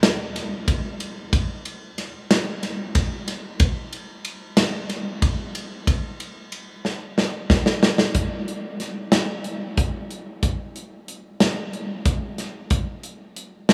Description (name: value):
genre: progressive instrumental, progressive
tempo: 184 BPM (eighths)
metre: 7/8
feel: straight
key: none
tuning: none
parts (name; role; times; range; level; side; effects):
- modern studio drum kit; drums; 0.0-13.7 s; hi-hat, kick drum, ride cymbal, snare drum; -24 LUFS; equal; none
room: wet cathedral reverb, RT60 6.3 s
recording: small room ambience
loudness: -24 LUFS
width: mono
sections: 0.0-8.1 A section; 8.1-13.7 B section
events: drum fill 6.8-8.1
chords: none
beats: 0.02 0.35 0.67 1.00 | 1.32 1.65 1.97 2.30 2.62 2.95 3.27 | 3.60 3.92 4.25 4.57 4.90 5.22 5.55 | 5.87 6.20 6.52 6.85 7.17 7.50 7.82 | 8.15 8.47 8.80 9.12 9.45 9.77 10.10 | 10.43 10.75 11.08 11.40 11.73 12.05 12.38 | 12.71 13.03 13.36 13.68